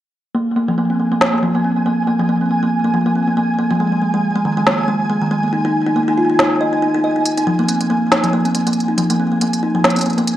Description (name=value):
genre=IDM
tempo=139 BPM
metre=4/4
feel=swing 56% on 16ths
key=unclear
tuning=A4 = 439 Hz
part: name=kalimba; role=arpeggios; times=0.3-10.2 s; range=Eb3 to Eb5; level=-15 LUFS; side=equal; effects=low-pass filter, ping-pong delay
part: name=flickering grainy texture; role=texture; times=0.7-10.4 s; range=Ab5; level=-23 LUFS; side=right 3 dB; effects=built-in reverb
part: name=organic electronic drum kit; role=drums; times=1.2-1.3, 4.7-10.4 s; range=hi-hat, snare drum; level=-18 LUFS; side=equal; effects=none
room=moderate plate reverb, RT60 2.3 s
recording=worn, warbling old tape, cassette tape, warbly pitch drift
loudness=-14 LUFS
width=side -12 dB against mid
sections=0.3-10.4 A section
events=none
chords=0.3 Bb5; 3.8 Ab5; 5.5 Ebsus4; 7.3 Bb5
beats=| 0.35 0.78 1.21 1.64 | 2.07 2.51 2.94 3.37 | 3.80 4.23 4.66 5.10 | 5.53 5.96 6.39 6.82 | 7.25 7.69 8.12 8.55 | 8.98 9.41 9.84 10.28